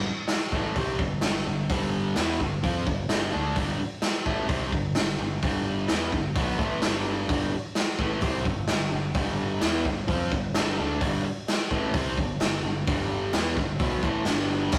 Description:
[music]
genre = garage rock duo or trio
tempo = 129 BPM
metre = 4/4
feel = straight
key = G mixolydian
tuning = A4 = 437 Hz
[part]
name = fuzz guitar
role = riff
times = 0.0-14.8 s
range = G2 to F4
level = -30 LUFS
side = equal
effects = distortion
[part]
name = growling fingered electric bass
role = bass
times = 0.0-14.8 s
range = G1 to F2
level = -37 LUFS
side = equal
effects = overdrive
[part]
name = raw garage drum kit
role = drums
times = 0.3-14.8 s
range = crash cymbal, hi-hat, kick drum, snare drum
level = -30 LUFS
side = equal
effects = none
[part]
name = group handclap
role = percussion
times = 0.3-14.4 s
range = none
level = -44 LUFS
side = equal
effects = none
[sound]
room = moderate small room reverb, RT60 0.5 s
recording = rough rehearsal-room recording, warm saturation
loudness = -27 LUFS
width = mono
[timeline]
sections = 0.0-14.7 A section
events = none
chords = 0.0 G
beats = 0.29 0.76 1.23 | 1.70 2.16 2.63 3.10 | 3.57 4.04 4.50 4.97 | 5.44 5.90 6.37 6.83 | 7.30 7.76 8.23 8.70 | 9.16 9.62 10.09 10.55 | 11.02 11.48 11.95 12.41 | 12.88 13.34 13.80 14.27 | 14.73

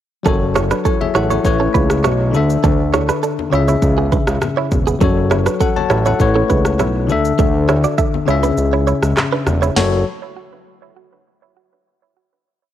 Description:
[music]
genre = afrobeats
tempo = 101 BPM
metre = 4/4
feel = straight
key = F# minor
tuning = A4 = 441 Hz
[part]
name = bell-like tine electric piano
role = accompaniment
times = 0.2-10.0 s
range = C#3 to A5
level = -18 LUFS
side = left 6 dB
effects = medium stereo tremolo, cassette tape
[part]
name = direct-recorded clean electric guitar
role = riff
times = 0.3-9.9 s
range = B3 to E5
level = -21 LUFS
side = right 8 dB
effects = cassette tape, analog delay
[part]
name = fat analog bass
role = bass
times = 0.3-10.0 s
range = E1 to D2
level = -17 LUFS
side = right 1 dB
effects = none
[part]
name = afro-pop drum kit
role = drums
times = 0.3-9.9 s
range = handclaps, hi-hat, kick drum, rim click, shaker, snare drum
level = -19 LUFS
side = right 1 dB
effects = cassette tape
[part]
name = congas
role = percussion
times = 0.3-10.0 s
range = none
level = -28 LUFS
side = left 6 dB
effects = none
[sound]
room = light reverb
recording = home recording on cassette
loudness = -13 LUFS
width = side -11 dB against mid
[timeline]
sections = 0.3-9.8 verse; 9.8-12.1 final chord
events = kick muted 8.6-9.8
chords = 0.3 F#m; 1.4 Aadd9; 2.3 Dsus2; 3.5 C#m; 5.0 F#m; 6.2 Aadd9; 7.1 Dsus2; 8.3 C#m; 9.8 N.C.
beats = | 0.26 0.85 1.45 2.04 | 2.64 3.23 3.83 4.42 | 5.01 5.61 6.20 6.79 | 7.39 7.98 8.58 9.17 | 9.77

